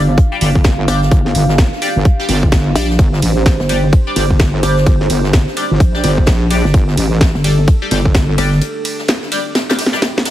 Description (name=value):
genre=bass house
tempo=128 BPM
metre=4/4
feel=swing 61% on 16ths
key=unclear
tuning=A4 = 441 Hz
part: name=dark analog pad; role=sustained chords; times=0.0-10.3 s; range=D4 to F5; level=-22 LUFS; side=right 2 dB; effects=wide subtle chorus, sidechain pumping
part: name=pulsing pluck wobble bass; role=bass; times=0.0-8.6 s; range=G1 to Bb1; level=-14 LUFS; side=equal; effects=chorus, sidechain pumping
part: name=electronic kick drum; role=drums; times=0.2-8.3 s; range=none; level=-11 LUFS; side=equal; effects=none
part: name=jazz brush drum kit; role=drums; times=0.2-10.3 s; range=hi-hat, snare drum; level=-28 LUFS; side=left 2 dB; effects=sidechain pumping on hats, high-pass filter on hats, high-pass filter on snare, high-pass filter on room
part: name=band-passed chord stab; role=stabs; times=0.3-10.0 s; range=G3 to D5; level=-22 LUFS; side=left 2 dB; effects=phaser, analog chorus, sidechain pumping, digital delay
part: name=wobble bass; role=bass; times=0.4-8.4 s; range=G1 to Bb1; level=-15 LUFS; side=equal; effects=chorus, tube saturation, sidechain pumping
part: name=house drum kit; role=drums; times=0.4-10.3 s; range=hi-hat, ride cymbal, snare drum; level=-19 LUFS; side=equal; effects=none
room=light reverb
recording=heavily compressed radio sound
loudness=-11 LUFS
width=side -13 dB against mid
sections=0.0-10.3 A section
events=break 8.6-10.3; drum fill 9.6-10.3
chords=0.0 G5